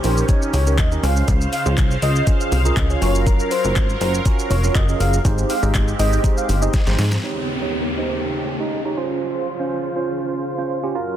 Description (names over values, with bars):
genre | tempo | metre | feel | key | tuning
dance-pop | 121 BPM | 4/4 | straight | unclear | A4 = 440 Hz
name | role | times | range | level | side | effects
airy dreamy lead | melody | 0.0-6.7 s | Bb4 to F5 | -25 LUFS | equal | chorus, sidechain pumping, digital delay
tine electric piano | accompaniment | 0.0-11.2 s | Db4 to Eb5 | -25 LUFS | right 4 dB | phaser, sidechain pumping, low-pass filter
filtered supersaw swell | sustained chords | 0.0-11.2 s | Eb2 to F5 | -27 LUFS | equal | phaser, sidechain pumping, low-pass filter
plucky analog bass | bass | 0.0-7.2 s | F1 to Ab2 | -19 LUFS | equal | sidechain pumping
smooth R&B drum kit | drums | 0.0-7.2 s | handclaps, hi-hat, kick drum, shaker, snare drum | -20 LUFS | equal | none
downlifter | sound effects | 7.2-11.2 s | none | -28 LUFS | equal | none
room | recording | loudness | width
little or no reverb | dense, heavily limited modern master | -17 LUFS | side -11 dB against mid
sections
0.0-7.2 A section; 7.2-11.2 B section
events
drop 0.0-7.2; drum fill 6.7-7.2; filter sweep 7.2-11.2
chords
0.0 Eb7; 1.0 Dbmaj7; 3.0 Gbmaj7; 5.2 Abmaj7; 7.2 Eb7; 9.0 Dbmaj7